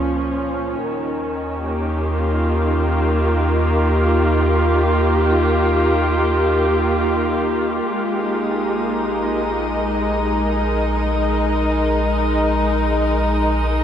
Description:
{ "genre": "ambient", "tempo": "free time", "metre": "none", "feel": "none", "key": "unclear", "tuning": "A4 = 441 Hz", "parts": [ { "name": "muted studio string section", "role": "sustained chords", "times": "0.0-13.8 s", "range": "Bb2 to Eb5", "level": "-18 LUFS", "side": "equal", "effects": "none" }, { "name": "warm sub bass", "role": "bass", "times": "0.0-13.8 s", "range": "Bb1 to Eb2", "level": "-22 LUFS", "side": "equal", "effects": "none" }, { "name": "drifting glass-harmonics texture", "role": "texture", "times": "8.3-13.8 s", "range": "Eb6", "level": "-38 LUFS", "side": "right 5 dB", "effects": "chorus, built-in reverb" } ], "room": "wet cathedral reverb, RT60 6.5 s", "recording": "dreamy mix soaked in reverb", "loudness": "-16 LUFS", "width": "side -9 dB against mid", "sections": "0.0-7.8 A section; 7.8-13.8 B section", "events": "none", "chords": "0.0 Bbm/Db; 0.8 Eb7; 7.8 Ab5/Bb" }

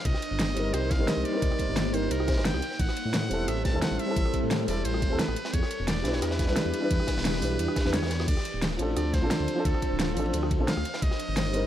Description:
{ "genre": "liquid drum and bass", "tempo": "175 BPM", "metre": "4/4", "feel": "straight", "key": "unclear", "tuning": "A4 = 444 Hz", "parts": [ { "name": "trumpet with metal mute", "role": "melody", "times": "0.0-11.7 s", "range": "A4 to A5", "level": "-35 LUFS", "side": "equal", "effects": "dub echo" }, { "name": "glassy FM pad", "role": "sustained chords", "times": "0.0-11.7 s", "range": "E3 to C5", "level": "-35 LUFS", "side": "equal", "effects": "ensemble chorus, built-in reverb" }, { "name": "swelling detuned saw bass", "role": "bass", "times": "0.1-11.7 s", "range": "D1 to A2", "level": "-30 LUFS", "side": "equal", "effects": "none" }, { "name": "crunchy breakbeat drum kit", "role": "drums", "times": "0.1-11.6 s", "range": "hi-hat, ride cymbal, snare drum", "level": "-38 LUFS", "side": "equal", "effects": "high-pass filter on cymbals, high-pass filter on hats, high-pass filter on snare, high-pass filter on room" }, { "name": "electronic kick drum", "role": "drums", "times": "0.1-11.1 s", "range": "none", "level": "-28 LUFS", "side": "equal", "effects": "overdrive" }, { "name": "pop drum kit", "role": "drums", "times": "0.1-11.6 s", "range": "crash cymbal, hi-hat, rim click, snare drum", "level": "-32 LUFS", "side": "equal", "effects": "overdrive" }, { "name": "warm grand piano", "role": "accompaniment", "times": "0.5-11.7 s", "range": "F3 to C5", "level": "-31 LUFS", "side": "equal", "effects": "none" } ], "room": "small room ambience", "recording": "none", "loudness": "-25 LUFS", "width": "side -11 dB against mid", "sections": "0.0-11.7 A section", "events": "none", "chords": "0.1 Cm7; 2.6 Am7; 5.4 Em7; 8.3 Dm7; 11.0 Cm7" }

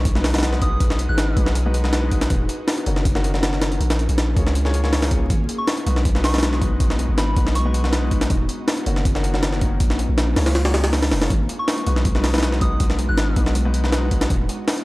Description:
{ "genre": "drum and bass, jungle", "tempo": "160 BPM", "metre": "4/4", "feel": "straight", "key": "G# dorian", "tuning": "A4 = 440 Hz", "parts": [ { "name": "ethereal airy pad", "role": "sustained chords", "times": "0.0-14.8 s", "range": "G#3 to B4", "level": "-30 LUFS", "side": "left 1 dB", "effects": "ensemble chorus, built-in reverb" }, { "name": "long sustained 808-style bass", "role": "bass", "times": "0.0-14.5 s", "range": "D#1 to C#2", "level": "-21 LUFS", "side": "equal", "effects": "none" }, { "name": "impact", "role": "sound effects", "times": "0.0-0.8 s", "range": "none", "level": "barely audible", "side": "none", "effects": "none" }, { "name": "jungle sampler-style drum kit", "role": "drums", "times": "0.1-14.8 s", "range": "hi-hat, kick drum, snare drum", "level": "-20 LUFS", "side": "equal", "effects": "overdrive" }, { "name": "warm grand piano", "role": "stabs", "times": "0.2-14.3 s", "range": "D#3 to C#5", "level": "-30 LUFS", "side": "left 2 dB", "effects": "vintage 12-bit sampler grit, dub echo" }, { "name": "soft synth bell", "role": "melody", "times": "0.6-1.4, 5.6-8.1, 11.6-13.4 s", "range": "B5 to F#6", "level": "-30 LUFS", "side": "equal", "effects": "chorus, vintage 12-bit sampler grit, dub echo" } ], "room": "little or no reverb", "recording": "dry, gritty hardware recording, vinyl crackle", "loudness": "-17 LUFS", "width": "side -20 dB against mid", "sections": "0.0-14.8 A section", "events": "impact 0.0-0.8", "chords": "0.0 G#m7; 2.3 D#m7; 3.8 A#m7; 5.3 G#m7; 8.3 D#m7; 9.8 A#m7; 11.3 G#m7; 14.3 D#m7" }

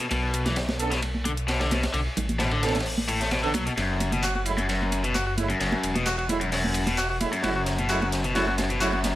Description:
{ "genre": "breakbeat, breaks", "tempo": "131 BPM", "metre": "4/4", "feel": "straight", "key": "B dorian", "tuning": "A4 = 444 Hz", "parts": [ { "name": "overdriven electric guitar", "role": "riff", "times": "0.0-9.1 s", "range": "F#2 to A3", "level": "-28 LUFS", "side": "left 2 dB", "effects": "low-pass filter, ping-pong delay" }, { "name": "punchy analog drum machine", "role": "drums", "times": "0.0-9.1 s", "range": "handclaps, hi-hat", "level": "-34 LUFS", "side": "equal", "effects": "high-pass filter on hats, high-pass filter on snare, high-pass filter on room" }, { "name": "detuned saw bass", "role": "bass", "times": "0.1-9.2 s", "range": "E1 to B1", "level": "-29 LUFS", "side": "equal", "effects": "none" }, { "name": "crunchy breakbeat drum kit", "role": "drums", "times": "0.1-9.2 s", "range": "hi-hat, kick drum, ride cymbal, snare drum", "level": "-32 LUFS", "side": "equal", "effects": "high-pass filter on kick, high-pass filter on cymbals, high-pass filter on hats, high-pass filter on snare, high-pass filter on room" }, { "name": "congas", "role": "percussion", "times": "0.1-9.1 s", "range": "none", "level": "-31 LUFS", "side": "right 1 dB", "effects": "none" }, { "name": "mellow brass ensemble", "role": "stabs", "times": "0.8-8.9 s", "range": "F#3 to A4", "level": "-32 LUFS", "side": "right 4 dB", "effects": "ping-pong delay" }, { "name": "bright alto saxophone", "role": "melody", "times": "4.2-9.0 s", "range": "F#4", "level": "-31 LUFS", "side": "equal", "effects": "telephone sound, vintage 12-bit sampler grit, ping-pong delay" } ], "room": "light reverb, small room ambience", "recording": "vinyl crackle", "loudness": "-23 LUFS", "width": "side -14 dB against mid", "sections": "0.0-9.2 A section", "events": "build-up 0.0-9.2; drum fill 3.8-9.2", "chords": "0.0 Bm7; 3.8 F#m9" }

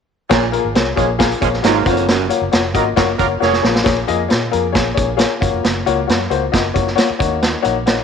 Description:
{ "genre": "uptempo 1960s-style soul", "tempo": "135 BPM", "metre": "4/4", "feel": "straight", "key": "unclear", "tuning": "A4 = 441 Hz", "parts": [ { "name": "warm upright piano", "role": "accompaniment", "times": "0.3-8.0 s", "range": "Bb3 to Eb5", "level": "-18 LUFS", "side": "left 10 dB", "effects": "tube saturation" }, { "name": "breathy baritone saxophone", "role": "riff", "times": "0.3-2.3 s", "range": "F2 to Bb2", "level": "-22 LUFS", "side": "right 12 dB", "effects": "none" }, { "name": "vintage muted fingered electric bass", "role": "bass", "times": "0.3-8.0 s", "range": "F1 to Bb2", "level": "-24 LUFS", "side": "right 2 dB", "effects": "none" }, { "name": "vintage drum kit", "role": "drums", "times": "0.3-8.0 s", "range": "hi-hat, kick drum, snare drum", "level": "-18 LUFS", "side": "right 2 dB", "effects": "none" }, { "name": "mellow horn section", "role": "second line", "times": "1.0-3.7 s", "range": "F3 to Db5", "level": "-21 LUFS", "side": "right 13 dB", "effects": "tube saturation" } ], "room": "light reverb, small room reverb", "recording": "1960s-style stereo with parts hard left and right", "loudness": "-14 LUFS", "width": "side -6 dB against mid", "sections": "0.3-3.9 A section; 3.9-8.0 B section", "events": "drum fill 3.4-3.9", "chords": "0.3 Bbm7; 1.9 Gbmaj7; 3.6 Bbm7; 5.4 Gbmaj7; 7.2 Ebm7" }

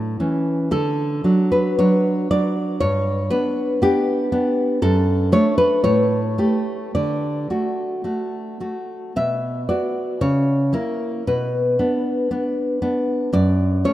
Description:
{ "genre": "romantic piece for solo classical guitar", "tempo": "53-60 BPM", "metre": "2/4", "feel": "rubato", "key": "D major, B minor from 9.2 s", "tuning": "A4 = 441 Hz", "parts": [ { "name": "nylon-string guitar", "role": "solo", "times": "0.0-13.9 s", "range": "F#2 to E5", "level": "-18 LUFS", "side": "equal", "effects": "none" } ], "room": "wet plate reverb, RT60 3.2 s", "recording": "rough home demo mix", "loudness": "-18 LUFS", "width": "side -14 dB against mid", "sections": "0.0-9.2 A section; 9.2-13.9 B section", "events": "none", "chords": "0.0 A; 0.7 D; 2.8 G; 4.8 D/F#; 5.8 A7; 6.9 D; 9.2 Bm; 10.2 C#m6; 11.3 Bm; 13.3 F#m" }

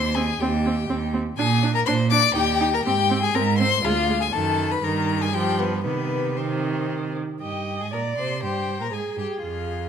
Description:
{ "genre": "quick classical-period movement for string quartet", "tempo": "120 BPM", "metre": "3/4", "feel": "rubato", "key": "C minor", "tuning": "A4 = 439 Hz", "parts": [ { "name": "warm violin", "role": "melody", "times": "0.0-9.9 s", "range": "B4 to D6", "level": "-26 LUFS", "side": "left 10 dB", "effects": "none" }, { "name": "rich violin", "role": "second line", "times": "0.0-9.9 s", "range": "B3 to D5", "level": "-27 LUFS", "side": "left 4 dB", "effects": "none" }, { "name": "rich cello", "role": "bass", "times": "0.0-9.9 s", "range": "D2 to C3", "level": "-25 LUFS", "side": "right 4 dB", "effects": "none" }, { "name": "rich viola", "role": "accompaniment", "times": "0.2-9.9 s", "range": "Eb3 to Eb5", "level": "-28 LUFS", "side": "right 3 dB", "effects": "none" } ], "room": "moderate recital hall reverb, RT60 1.5 s", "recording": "none", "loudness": "-20 LUFS", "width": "side -7 dB against mid", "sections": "0.0-7.4 A section; 7.4-9.9 A section", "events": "none", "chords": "0.0 Cm/Eb; 1.4 Bb; 2.4 Eb; 2.9 Ab; 3.8 Ddim; 4.3 B7/F#; 4.8 Ebadd11/G; 5.3 G7; 5.8 Cm; 7.4 Cm/G; 8.9 Fmadd9" }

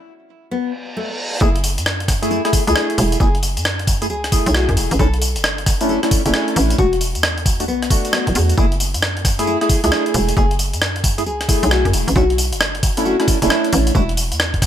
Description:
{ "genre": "UK garage, two-step garage", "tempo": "134 BPM", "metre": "4/4", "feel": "swing 64% on 16ths", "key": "F# minor", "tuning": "A4 = 440 Hz", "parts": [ { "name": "nylon-string guitar", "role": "melody", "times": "0.5-14.1 s", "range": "A3 to A4", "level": "-25 LUFS", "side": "left 3 dB", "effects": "ping-pong delay" }, { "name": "reverse cymbal", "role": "sound effects", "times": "0.7-1.4 s", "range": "none", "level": "-26 LUFS", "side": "right 2 dB", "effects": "none" }, { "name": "percussive organ stab", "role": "stabs", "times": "1.4-14.0 s", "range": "A3 to G#4", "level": "-20 LUFS", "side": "equal", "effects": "wide subtle chorus, tape echo" }, { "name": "hollow knocking FM bass", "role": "bass", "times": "1.4-14.7 s", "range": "D1 to F#2", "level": "-20 LUFS", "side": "equal", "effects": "none" }, { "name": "breakbeat sampler-style drum kit", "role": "drums", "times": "1.4-14.7 s", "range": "hi-hat, rim click, tambourine", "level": "-20 LUFS", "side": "equal", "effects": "none" }, { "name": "electronic kick drum", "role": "drums", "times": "1.4-14.7 s", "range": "none", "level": "-18 LUFS", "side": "equal", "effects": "none" } ], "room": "digital ambience", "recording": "none", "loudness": "-15 LUFS", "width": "side -10 dB against mid", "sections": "0.0-1.4 A section; 1.4-14.7 B section", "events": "break 0.0-1.4; reverse cymbal 0.7-1.4; drop 1.4-14.7", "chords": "0.0 N.C.; 1.4 F#m9; 5.0 Bm11; 6.8 E9sus4; 8.6 F#m9; 12.2 Bm11; 13.9 E9sus4" }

